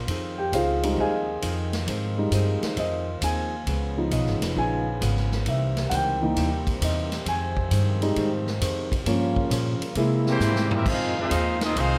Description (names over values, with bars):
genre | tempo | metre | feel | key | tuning
jazz, big band swing | 134 BPM | 4/4 | swing 68% on 8ths | F minor | A4 = 441 Hz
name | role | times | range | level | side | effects
clear trombone section | sustained chords | 0.0-12.0 s | C3 to Ab4 | -37 LUFS | equal | none
upright bass | bass | 0.0-12.0 s | F1 to C3 | -29 LUFS | equal | none
archtop guitar, miked and amplified | accompaniment | 0.1-12.0 s | F2 to Ab4 | -37 LUFS | equal | none
swinging big-band drum kit | drums | 0.1-11.9 s | crash cymbal, hi-hat, kick drum, ride cymbal, snare drum, toms | -34 LUFS | equal | none
dark concert grand piano | accompaniment | 0.4-10.7 s | E3 to Ab5 | -29 LUFS | equal | none
bright trumpet section | melody | 10.3-12.0 s | Bb3 to F5 | -29 LUFS | equal | none
clear trombone section | second line | 10.3-12.0 s | E3 to F4 | -31 LUFS | equal | none
room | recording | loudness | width
light reverb | close, detailed microphones | -25 LUFS | mono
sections
0.0-10.9 A section; 10.9-12.0 B section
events
grand piano solo 0.0-10.9; drum fill 10.4-10.9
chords
0.1 Fm7; 3.7 Db7; 5.5 C7#9; 7.3 Fm7; 9.1 Gm7b5; 10.0 C7b13; 10.9 Fm7